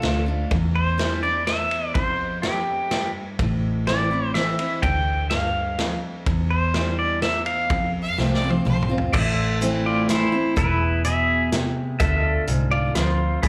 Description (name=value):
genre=honky-tonk and classic country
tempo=125 BPM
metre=3/4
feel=straight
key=A harmonic minor from 9.1 s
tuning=A4 = 442 Hz
part: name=pedal steel guitar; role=melody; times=0.0-13.5 s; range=E4 to G5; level=-26 LUFS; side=equal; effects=none
part: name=picked steel-string acoustic guitar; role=accompaniment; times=0.0-13.5 s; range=E2 to F4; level=-29 LUFS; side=equal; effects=none
part: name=vintage muted fingered electric bass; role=bass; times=0.0-13.5 s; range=E1 to F2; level=-28 LUFS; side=equal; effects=none
part: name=vintage drum kit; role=drums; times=0.0-13.5 s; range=crash cymbal, hi-hat, kick drum, ride cymbal, snare drum, toms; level=-29 LUFS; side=equal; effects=none
part: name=bright fiddle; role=second line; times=8.0-8.9 s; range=C5 to F5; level=-31 LUFS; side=equal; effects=slapback echo
part: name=pedal steel guitar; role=sustained chords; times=9.1-13.5 s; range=F4 to E5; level=-37 LUFS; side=equal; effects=subtle chorus
room=small room ambience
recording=live gig heard through the venue's PA, club reverb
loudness=-22 LUFS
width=mono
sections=0.0-9.1 A section; 9.1-13.5 B section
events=drum fill 8.2-9.1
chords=0.0 Dm; 0.5 Cadd9/E; 1.9 F5; 3.4 Am; 4.8 Dm; 6.3 Cadd9/E; 7.7 F; 9.1 Am; 10.6 E; 12.0 Dm